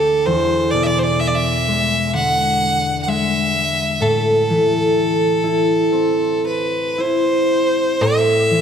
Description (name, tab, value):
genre	celtic folk, Celtic slow air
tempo	56-67 BPM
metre	4/4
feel	rubato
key	A dorian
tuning	A4 = 442 Hz
part	clear fiddle	melody	0.0-8.6 s	A4 to F#5	-18 LUFS	right 1 dB	none
part	concert harp	accompaniment	0.0-8.6 s	D2 to E4	-18 LUFS	left 1 dB	none
room	wet church reverb, RT60 2.7 s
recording	none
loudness	-15 LUFS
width	side -7 dB against mid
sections	0.0-8.0 A section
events	none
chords	0.3 E7; 4.0 Am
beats	| 0.27 1.20 2.14 3.08 | 4.01 4.94 5.92 6.96 | 8.00